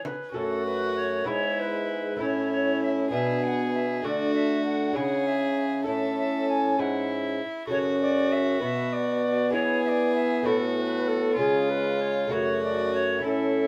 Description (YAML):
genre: classical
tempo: 65 BPM (dotted quarters)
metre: 6/8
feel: straight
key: unclear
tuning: A4 = 440 Hz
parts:
  - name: mellow alto recorder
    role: melody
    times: 0.0-13.7 s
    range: G#4 to G#5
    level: -32 LUFS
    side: equal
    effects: none
  - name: warm violin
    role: second line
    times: 0.0-13.7 s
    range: E4 to A4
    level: -34 LUFS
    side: equal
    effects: none
  - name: lute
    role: accompaniment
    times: 0.0-13.7 s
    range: F#2 to A4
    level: -35 LUFS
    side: equal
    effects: none
  - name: warm trombone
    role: accompaniment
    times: 0.0-13.7 s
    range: G#3 to C#4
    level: -31 LUFS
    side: equal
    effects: none
  - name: warm bassoon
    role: bass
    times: 0.0-13.7 s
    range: F#2 to E3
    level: -33 LUFS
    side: equal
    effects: none
room: moderate stone room reverb, RT60 0.9 s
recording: none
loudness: -26 LUFS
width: mono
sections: 0.4-13.7 A section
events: none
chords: 0.4 F#m; 1.3 E/G#; 2.2 A; 3.1 Bm; 4.0 D; 5.0 C#m; 5.9 A; 7.7 F#m; 8.6 Bm; 9.5 E; 10.5 A; 11.4 C#; 12.3 F#m